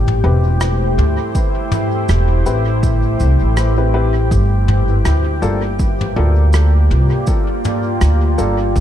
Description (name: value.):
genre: ambient dub.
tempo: 81 BPM.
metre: 4/4.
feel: swing 56% on 16ths.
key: G dorian.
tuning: A4 = 440 Hz.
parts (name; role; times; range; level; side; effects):
deep dark ambient pad; sustained chords; 0.0-8.8 s; A3 to G5; -20 LUFS; left 1 dB; chorus, built-in reverb.
upright bass; bass; 0.0-8.8 s; E1 to D2; -14 LUFS; equal; none.
soft brush drum kit; drums; 0.1-8.8 s; cabasa, rim click, toms; -23 LUFS; left 1 dB; dub echo.
warm upright piano; stabs; 0.2-8.6 s; Bb3 to B4; -25 LUFS; left 4 dB; dub echo.
electronic kick drum; drums; 1.4-8.8 s; none; -18 LUFS; equal; overdrive.
room: studio reverb.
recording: dark, warm production.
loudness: -13 LUFS.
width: side -11 dB against mid.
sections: 0.0-8.8 A section.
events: none.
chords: 0.0 Am7; 4.3 Gm7.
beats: 0.61 | 1.35 2.09 2.83 3.57 | 4.31 5.05 5.79 6.53 | 7.28 8.02 8.76.